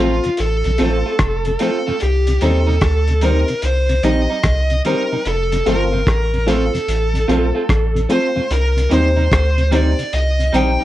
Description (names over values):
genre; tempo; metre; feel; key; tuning
roots reggae; 74 BPM; 4/4; swing 65% on 16ths; C dorian; A4 = 441 Hz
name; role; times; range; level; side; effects
dark smooth lead guitar; melody; 0.0-10.8 s; F4 to G5; -20 LUFS; equal; overdrive
clean electric guitar; accompaniment; 0.0-10.8 s; G3 to F4; -23 LUFS; right 5 dB; none
tonewheel organ; accompaniment; 0.0-10.6 s; F2 to C4; -23 LUFS; left 1 dB; chorus vibrato, slow rotary speaker, tube saturation
dark upright piano; stabs; 0.0-10.8 s; C4 to C5; -21 LUFS; left 2 dB; none
soft dub sub bass; bass; 0.0-10.8 s; F1 to Eb2; -17 LUFS; equal; none
cloth-damped thuddy drum kit; drums; 0.2-10.8 s; hi-hat, kick drum, rim click; -21 LUFS; equal; none
room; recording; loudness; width
light reverb; cassette tape; -14 LUFS; side -14 dB against mid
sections
0.0-10.8 A section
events
none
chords
0.0 F; 2.0 Cm; 5.3 F; 8.5 Cm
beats
0.38 1.19 | 2.00 2.82 3.63 4.44 | 5.25 6.06 6.88 7.69 | 8.50 9.31 10.13